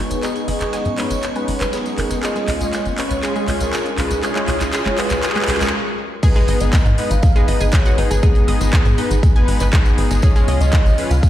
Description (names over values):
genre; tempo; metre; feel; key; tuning
progressive house; 120 BPM; 4/4; straight; G# dorian; A4 = 439 Hz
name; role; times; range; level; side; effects
warm velvety synth lead; melody; 0.0-11.3 s; G#4 to E#5; -26 LUFS; equal; chorus, sidechain pumping, ping-pong delay
airy breathy pad; sustained chords; 0.0-11.3 s; E#3 to E#4; -29 LUFS; left 1 dB; chorus, sidechain pumping
soft supersaw; stabs; 0.0-11.1 s; G#3 to B4; -24 LUFS; left 1 dB; sidechain pumping, low-pass filter, ping-pong delay
tight sequencer bass; bass; 0.0-11.2 s; G#1 to G#2; -19 LUFS; equal; sidechain pumping
riser; sound effects; 0.3-5.7 s; none; -32 LUFS; right 2 dB; none
drifting glass-harmonics texture; texture; 0.0-11.3 s; G#5 to C#6; -37 LUFS; right 2 dB; chorus, built-in reverb, sidechain pumping
analog pluck; arpeggios; 0.1-10.5 s; G#3 to G#6; -27 LUFS; right 1 dB; chorus, sidechain pumping, ping-pong delay
house drum kit; drums; 0.1-11.3 s; crash cymbal, handclaps, hi-hat; -26 LUFS; equal; sidechain pumping on hats, sidechain pumping on cymbals
tambourine; percussion; 0.1-11.3 s; none; -34 LUFS; left 2 dB; none
dusty soul sampler-style drum kit; drums; 0.2-11.3 s; hi-hat, snare drum; -36 LUFS; left 1 dB; none
electronic kick drum; drums; 6.2-11.3 s; none; -13 LUFS; equal; overdrive
room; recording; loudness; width
light reverb, digital ambience; played on a big sound system in a bare room, stone room reverb; -15 LUFS; side -12 dB against mid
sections
0.0-6.2 A section; 6.2-11.3 B section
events
build-up 0.0-6.2; drum fill 0.0-5.7; filter sweep on synth arpeggio sound 0.0-6.2; filter sweep on supersaw synth 0.0-6.2; filter sweep on analog synth pad 0.0-6.2; stop 5.7-6.2; drop 6.2-11.3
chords
0.0 G#m; 2.2 C#; 6.2 G#m; 10.2 C#